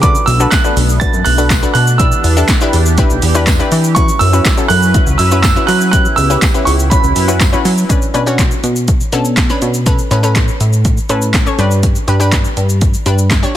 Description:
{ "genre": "dance-pop", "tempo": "122 BPM", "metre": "4/4", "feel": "straight", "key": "B minor", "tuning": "A4 = 438 Hz", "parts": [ { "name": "clear grand piano", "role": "melody", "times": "0.0-7.6 s", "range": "B5 to A6", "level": "-16 LUFS", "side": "right 4 dB", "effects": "tape echo" }, { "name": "analog pluck", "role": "accompaniment", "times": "0.0-13.6 s", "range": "C#4 to C#5", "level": "-18 LUFS", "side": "left 2 dB", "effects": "chorus, sidechain pumping" }, { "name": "sweeping resonant pad", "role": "sustained chords", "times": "0.0-7.9 s", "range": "C#3 to B4", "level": "-22 LUFS", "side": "right 2 dB", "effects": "chorus, sidechain pumping" }, { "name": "chorused synth bass", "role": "bass", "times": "0.0-13.4 s", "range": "B1 to F#3", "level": "-13 LUFS", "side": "equal", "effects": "sidechain pumping" }, { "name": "punchy analog drum machine", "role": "drums", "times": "0.0-13.5 s", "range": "handclaps, hi-hat, kick drum, shaker, snare drum", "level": "-14 LUFS", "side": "equal", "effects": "none" }, { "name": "tambourine", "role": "percussion", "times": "0.5-7.5 s", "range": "none", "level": "-29 LUFS", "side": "right 5 dB", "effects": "none" } ], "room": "digital ambience", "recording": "dense, heavily limited modern master", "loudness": "-10 LUFS", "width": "side -12 dB against mid", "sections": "0.0-7.9 A section; 7.9-13.6 B section", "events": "none", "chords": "0.0 Bm7; 2.0 Em7; 4.0 F#7sus4; 5.9 C#m7b5; 6.9 F#7sus4; 7.9 Bmadd9; 9.9 Aadd9; 11.6 G" }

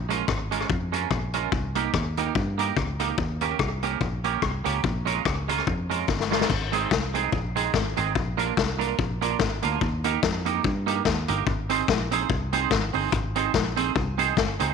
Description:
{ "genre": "ska", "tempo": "145 BPM", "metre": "4/4", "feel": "swing 56% on 8ths", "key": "unclear", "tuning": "A4 = 443 Hz", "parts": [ { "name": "fingered electric bass", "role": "bass", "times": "0.0-14.7 s", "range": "G1 to G2", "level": "-30 LUFS", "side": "equal", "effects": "none" }, { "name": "twangy electric guitar", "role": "accompaniment", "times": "0.1-14.7 s", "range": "Ab3 to C5", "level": "-27 LUFS", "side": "right 14 dB", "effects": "lush chorus, slapback echo" }, { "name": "vintage drum kit", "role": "drums", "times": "0.1-14.7 s", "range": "crash cymbal, hi-hat, kick drum, rim click, snare drum", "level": "-26 LUFS", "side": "left 6 dB", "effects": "slapback echo" } ], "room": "light reverb, studio ambience", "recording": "1960s-style stereo with parts hard left and right", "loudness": "-23 LUFS", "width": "side -6 dB against mid", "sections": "0.0-6.5 A section; 6.5-14.7 B section", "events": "drum fill 6.1-6.5", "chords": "0.0 Bbm7; 1.5 Cm7; 3.2 Eb7; 4.8 Bbm7; 6.5 Ab; 8.2 Bb; 9.8 Eb; 11.5 Ab" }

